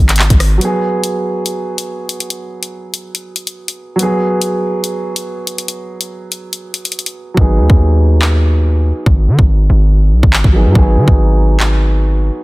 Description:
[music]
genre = hip hop, drill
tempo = 142 BPM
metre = 4/4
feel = half-time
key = G# minor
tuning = A4 = 440 Hz
[part]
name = dark baby grand piano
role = accompaniment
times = 0.0-12.4 s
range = F#3 to G#4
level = -18 LUFS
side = right 1 dB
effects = low-pass filter
[part]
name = hard-hitting 808-style bass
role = bass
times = 0.0-0.6, 7.4-12.3 s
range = G#1 to D#3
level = -11 LUFS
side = equal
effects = none
[part]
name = drill drum kit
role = drums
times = 0.1-11.7 s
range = handclaps, hi-hat, kick drum, rim click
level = -13 LUFS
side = equal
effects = none
[sound]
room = digital ambience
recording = dense, heavily limited modern master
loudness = -11 LUFS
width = side -21 dB against mid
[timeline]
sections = 0.6-7.4 A section; 7.4-12.4 B section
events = kick muted 6.5-7.4; hi-hats muted 7.4-12.4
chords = 0.0 G#m7

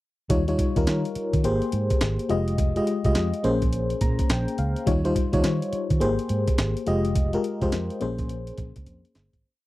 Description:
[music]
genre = R&B, new jack swing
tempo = 105 BPM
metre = 4/4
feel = swing 63% on 16ths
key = Bb dorian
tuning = A4 = 440 Hz
[part]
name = FM electric piano with tremolo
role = accompaniment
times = 0.3-9.5 s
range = G3 to Bb5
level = -25 LUFS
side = left 2 dB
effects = none
[part]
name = vintage muted fingered electric bass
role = bass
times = 0.3-9.4 s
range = F1 to Eb3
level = -26 LUFS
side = right 1 dB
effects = none
[part]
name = breakbeat sampler-style drum kit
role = drums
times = 0.3-9.4 s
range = hi-hat, kick drum, snare drum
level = -25 LUFS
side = right 1 dB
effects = none
[sound]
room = little or no reverb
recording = dry, close 1970s-style studio recording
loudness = -22 LUFS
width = side -17 dB against mid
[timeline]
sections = 0.3-9.4 verse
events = FM electric piano fill 3.7-4.9; fade-out 7.2-9.4; drum fill 8.9-9.4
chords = 0.3 Eb9; 1.4 Abmaj9; 2.3 Fm9; 3.4 Bbm9; 4.9 Eb9; 6.0 Abmaj9; 6.9 Fm9; 8.0 Bbm9

